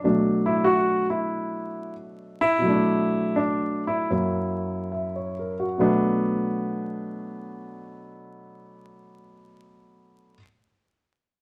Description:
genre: solo jazz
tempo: 67-97 BPM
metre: 4/4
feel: swing 67% on 8ths, rubato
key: B minor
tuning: A4 = 440 Hz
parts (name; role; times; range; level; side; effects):
- warm grand piano; solo; 0.0-10.4 s; F#2 to E5; -25 LUFS; equal; none
room: wet studio reverb, RT60 0.8 s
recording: vinyl crackle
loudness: -25 LUFS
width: mono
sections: 0.0-5.8 A section; 5.8-9.3 B section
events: slowing down 0.0-5.8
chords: 0.0 Bm7; 4.1 F#7; 5.8 Bm7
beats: | 0.05 0.67 1.30 1.96 | 2.64 3.35 4.11 4.92 | 5.79 6.68 7.57 8.45

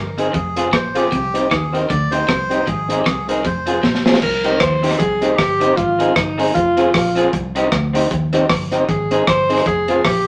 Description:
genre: ska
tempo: 154 BPM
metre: 4/4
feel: swing 58% on 8ths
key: C minor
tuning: A4 = 441 Hz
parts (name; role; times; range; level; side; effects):
- melodica; melody; 0.0-4.0 s; G4 to D5; -25 LUFS; equal; none
- electric guitar at the edge of break-up; riff; 0.0-4.0 s; F2 to Eb3; -27 LUFS; equal; none
- fingered electric bass; bass; 0.0-10.3 s; F1 to Eb2; -28 LUFS; equal; none
- vintage hollow-body jazz guitar; accompaniment; 0.2-10.0 s; C4 to Ab4; -24 LUFS; equal; none
- mellow tonewheel organ; stabs; 0.2-10.1 s; C4 to C5; -24 LUFS; equal; overdrive, slow rotary speaker
- crunchy breakbeat drum kit; drums; 0.2-10.2 s; crash cymbal, hi-hat, kick drum, rim click, snare drum; -23 LUFS; equal; none
- breathy alto saxophone; melody; 4.2-10.3 s; Eb4 to C5; -20 LUFS; equal; none
room: wet studio reverb, RT60 0.6 s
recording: none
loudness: -17 LUFS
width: mono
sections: 0.0-4.2 A section; 4.2-10.3 B section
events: drum fill 3.8-4.2; alto saxophone solo 4.2-10.3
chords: 0.3 Fm; 1.1 Cm; 2.7 Ab; 3.5 Fm; 4.2 Cm; 5.8 Ab; 6.6 Fm; 7.3 Cm; 8.9 Ab; 9.7 Fm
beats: 0.34 0.73 | 1.12 1.51 1.90 2.29 | 2.67 3.06 3.45 3.84 | 4.23 4.62 5.00 5.39 | 5.78 6.17 6.55 6.94 | 7.33 7.72 8.11 8.50 | 8.88 9.27 9.66 10.05

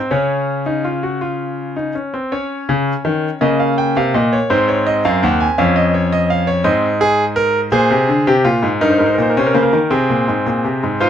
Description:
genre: classical, baroque-style 3-part fugue for grand piano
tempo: 55 BPM (dotted quarters)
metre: 6/8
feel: straight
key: Db major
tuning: A4 = 440 Hz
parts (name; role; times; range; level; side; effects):
- bright concert grand piano; solo; 0.0-11.1 s; Eb2 to Ab5; -14 LUFS; equal; none
room: light reverb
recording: none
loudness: -14 LUFS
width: side -9 dB against mid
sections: 0.0-2.3 A section; 2.3-11.0 B section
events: none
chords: 0.1 Db; 2.3 Dbsus2; 3.4 Eb7/Db; 4.5 Ab7; 5.6 Db/F; 6.7 Ab; 7.7 Bb7; 8.8 Eb7/G; 9.9 Ab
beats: | 0.10 1.21 | 2.32 3.42 | 4.51 5.59 | 6.66 7.73 | 8.82 9.91 | 11.01

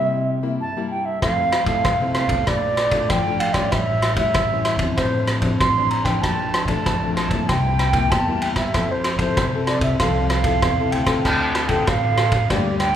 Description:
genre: samba and choro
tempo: 96 BPM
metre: 4/4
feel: straight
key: F major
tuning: A4 = 439 Hz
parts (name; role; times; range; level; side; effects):
- baroque flute; melody; 0.0-13.0 s; C5 to C6; -22 LUFS; right 2 dB; none
- nylon-string guitar; accompaniment; 0.0-13.0 s; F2 to A4; -24 LUFS; left 3 dB; none
- upright bass; bass; 1.2-13.0 s; Ab1 to F3; -26 LUFS; equal; none
- vintage drum kit; drums; 1.2-13.0 s; crash cymbal, kick drum, ride cymbal, rim click; -22 LUFS; equal; none
room: wet recital hall reverb, RT60 1.7 s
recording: recorded in a church or concert hall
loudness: -17 LUFS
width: side -10 dB against mid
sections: 0.0-11.3 A section; 11.3-13.0 B section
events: none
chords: 0.0 C7; 1.2 Fmaj7; 2.5 Bbmaj7; 3.7 A7; 5.0 Dm7/A; 6.2 Bbmaj7; 7.5 C7; 8.7 Fmaj7; 11.3 Dm7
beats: 0.60 | 1.23 1.85 2.48 3.11 | 3.73 4.36 4.99 5.61 | 6.24 6.87 7.49 8.12 | 8.75 9.37 10.00 10.63 | 11.25 11.88 12.51

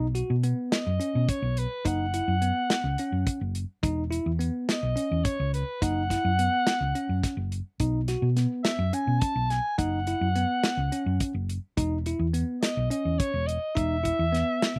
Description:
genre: progressive instrumental, band music in an uneven meter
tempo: 212 BPM (eighths)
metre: 7/8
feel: straight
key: unclear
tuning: A4 = 440 Hz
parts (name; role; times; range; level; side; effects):
- bell-like tine electric piano; arpeggios; 0.0-14.7 s; B3 to F#4; -33 LUFS; equal; none
- hollow-body short-scale fingered electric bass; bass; 0.0-14.8 s; E1 to B2; -29 LUFS; equal; none
- warm soul drum kit; drums; 0.2-14.8 s; hi-hat, kick drum, snare drum; -31 LUFS; equal; none
- mellow soprano saxophone; melody; 0.7-14.8 s; B4 to A5; -32 LUFS; equal; none
room: little or no reverb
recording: recorded outdoors, with no room sound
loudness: -27 LUFS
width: mono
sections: 0.0-14.8 A section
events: none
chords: 0.0 B; 1.8 F#5; 3.8 E5; 5.8 F#5; 7.8 B5; 9.8 F#5; 11.8 E5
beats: 0.14 0.43 0.71 0.99 1.28 1.56 | 1.84 2.13 2.41 2.69 2.98 3.26 3.55 | 3.83 4.11 4.40 4.68 4.96 5.25 5.53 | 5.81 6.10 6.38 6.67 6.95 7.23 7.52 | 7.80 8.08 8.37 8.65 8.93 9.22 9.50 | 9.79 10.07 10.35 10.64 10.92 11.20 11.49 | 11.77 12.06 12.34 12.62 12.91 13.19 13.48 | 13.76 14.04 14.33 14.61

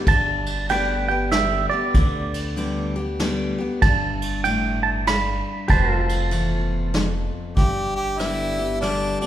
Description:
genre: honky-tonk and classic country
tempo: 96 BPM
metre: 3/4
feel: swing 63% on 8ths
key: G mixolydian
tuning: A4 = 439 Hz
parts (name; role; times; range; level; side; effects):
- picked steel-string acoustic guitar; accompaniment; 0.0-9.3 s; E2 to G4; -27 LUFS; left 2 dB; none
- pedal steel guitar; sustained chords; 0.0-7.6 s; F4 to D5; -30 LUFS; left 1 dB; none
- twangy electric guitar; second line; 0.1-6.9 s; D5 to B5; -23 LUFS; right 5 dB; none
- upright bass; bass; 0.1-9.1 s; F1 to D2; -27 LUFS; equal; none
- vintage brush drum kit; drums; 0.1-9.3 s; kick drum, ride cymbal, rim click, snare drum; -24 LUFS; equal; none
- clear harmonica; melody; 7.6-9.3 s; D4 to G4; -24 LUFS; equal; none
room: wet recital hall reverb, RT60 1.6 s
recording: recorded in a church or concert hall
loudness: -19 LUFS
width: side -11 dB against mid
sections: 0.1-7.6 A section; 7.6-9.3 B section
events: clean electric guitar solo 0.1-7.6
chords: 0.1 G; 5.7 F; 7.6 G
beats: | 0.07 0.69 1.32 | 1.94 2.57 3.19 | 3.82 4.45 5.07 | 5.70 6.32 6.95 | 7.57 8.20 8.82

